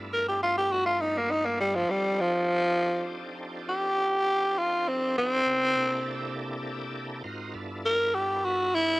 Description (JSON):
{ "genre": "blues", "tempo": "67 BPM (dotted quarters)", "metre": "12/8", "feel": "straight", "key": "unclear", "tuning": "A4 = 438 Hz", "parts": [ { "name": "bright tonewheel organ", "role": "sustained chords", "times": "0.0-9.0 s", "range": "G2 to Bb4", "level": "-36 LUFS", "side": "equal", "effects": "slow rotary speaker, overdrive, chorus vibrato, cassette tape" }, { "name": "growling tenor saxophone", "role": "melody", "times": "0.1-9.0 s", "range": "F3 to Bb4", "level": "-24 LUFS", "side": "equal", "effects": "cassette tape" } ], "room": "light reverb", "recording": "home recording on cassette", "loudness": "-25 LUFS", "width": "side -21 dB against mid", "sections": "0.0-9.0 A section", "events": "tenor saxophone solo 0.0-9.0", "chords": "0.0 G13; 1.9 F13; 5.5 C13; 7.2 G13" }